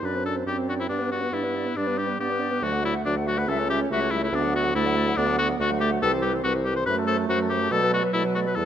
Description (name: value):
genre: quick classical-period movement for wind quintet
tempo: 141 BPM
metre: 4/4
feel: rubato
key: unclear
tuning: A4 = 439 Hz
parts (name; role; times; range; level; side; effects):
- silver concert flute; melody; 0.0-8.7 s; A4 to F#5; -31 LUFS; left 6 dB; none
- warm oboe; second line; 0.0-8.7 s; D4 to C5; -26 LUFS; left 4 dB; none
- mellow French horn; accompaniment; 0.0-8.7 s; E3 to D4; -34 LUFS; equal; none
- mellow clarinet; accompaniment; 0.0-8.7 s; F#3 to D4; -30 LUFS; right 8 dB; none
- mellow bassoon; bass; 0.0-8.7 s; C2 to B2; -27 LUFS; right 2 dB; none
room: light reverb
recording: close, detailed microphones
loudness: -22 LUFS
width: side -10 dB against mid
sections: 0.0-8.7 A section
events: none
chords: 0.0 D7/F#; 0.9 G; 2.6 D; 3.5 A7/C#; 4.3 D; 6.0 Cmaj7; 6.9 F#dim; 7.7 Bm7